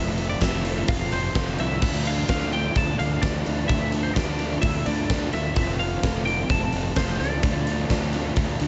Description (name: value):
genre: rock, shoegaze and dream pop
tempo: 128 BPM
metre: 4/4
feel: straight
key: D minor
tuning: A4 = 440 Hz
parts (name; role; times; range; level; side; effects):
- twelve-string electric guitar; melody; 0.0-8.7 s; C5 to A5; -32 LUFS; equal; lush chorus, analog delay
- overdriven semi-hollow guitar; riff; 0.0-8.7 s; D3 to F4; -34 LUFS; equal; subtle chorus
- overdriven semi-hollow guitar; riff; 0.0-8.7 s; D3 to F4; -34 LUFS; equal; reverse reverb
- fuzz fingered electric bass; bass; 0.0-8.7 s; F1 to D2; -30 LUFS; equal; overdrive
- huge arena drum kit; drums; 0.2-8.7 s; crash cymbal, hi-hat, kick drum, snare drum; -28 LUFS; equal; none
room: studio reverb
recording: nothing above 7.9 kHz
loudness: -24 LUFS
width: mono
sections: 0.0-8.7 A section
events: none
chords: 0.0 F; 1.8 Dm; 5.6 F; 7.4 Dm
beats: 0.42 0.89 1.36 | 1.83 2.30 2.77 3.24 | 3.70 4.17 4.64 5.11 | 5.57 6.04 6.51 6.97 | 7.44 7.91 8.37